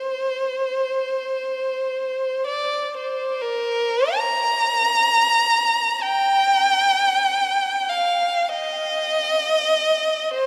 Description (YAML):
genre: classical, free, expressive piece for unaccompanied violin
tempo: free time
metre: none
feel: none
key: Eb major from 3.4 s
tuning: A4 = 440 Hz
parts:
  - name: rich violin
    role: solo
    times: 0.0-10.5 s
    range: Bb4 to Bb5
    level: -21 LUFS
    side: equal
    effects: none
room: wet cathedral reverb, RT60 5.6 s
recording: none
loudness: -21 LUFS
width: mono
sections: 0.0-3.4 A section; 3.4-10.5 B section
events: none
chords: none